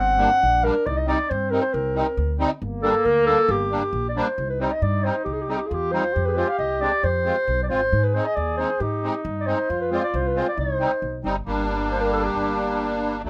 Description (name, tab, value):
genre	klezmer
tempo	136 BPM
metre	2/4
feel	straight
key	G harmonic minor, C harmonic minor from 4.4 s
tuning	A4 = 444 Hz
part	mellow clarinet	melody	0.0-13.0 s	G4 to F#5	-25 LUFS	equal	none
part	clear trombone	second line	0.0-11.2 s	Bb3 to Ab4	-32 LUFS	equal	none
part	upright bass	bass	0.0-13.3 s	G1 to Ab2	-30 LUFS	equal	none
part	musette accordion	accompaniment	0.2-13.3 s	F#3 to F4	-27 LUFS	equal	none
room	light reverb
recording	rough home demo mix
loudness	-23 LUFS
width	mono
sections	0.0-4.4 A section; 4.4-11.5 B section; 11.5-13.3 C section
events	none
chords	0.0 Gm; 0.9 Cm; 2.6 Gm; 4.4 Cm; 6.1 Fm; 7.9 Ab; 9.7 Fm; 10.6 Cm; 11.5 Gm